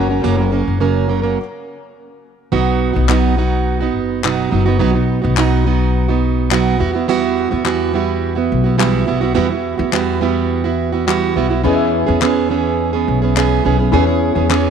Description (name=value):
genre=acoustic pop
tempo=105 BPM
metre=4/4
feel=straight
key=B major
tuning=A4 = 444 Hz
part: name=felt-muted upright piano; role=accompaniment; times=0.0-1.4, 11.6-14.7 s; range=C#4 to F#5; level=-21 LUFS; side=left 14 dB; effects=none
part: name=fingerpicked plugged-in steel-string acoustic guitar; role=accompaniment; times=0.0-14.7 s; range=F#2 to A#4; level=-16 LUFS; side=right 7 dB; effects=none
part: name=upright bass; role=bass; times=0.0-14.7 s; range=F#1 to E2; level=-18 LUFS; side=left 3 dB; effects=none
part: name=group handclap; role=percussion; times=3.1-14.6 s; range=none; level=-24 LUFS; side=left 11 dB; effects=none
room=light reverb, small room reverb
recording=1960s-style stereo with parts hard left and right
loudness=-14 LUFS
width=side -7 dB against mid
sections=0.0-2.5 A section; 2.5-14.7 B section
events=stop 1.4-2.5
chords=0.0 F#; 2.5 B; 6.8 Emadd9; 11.6 E6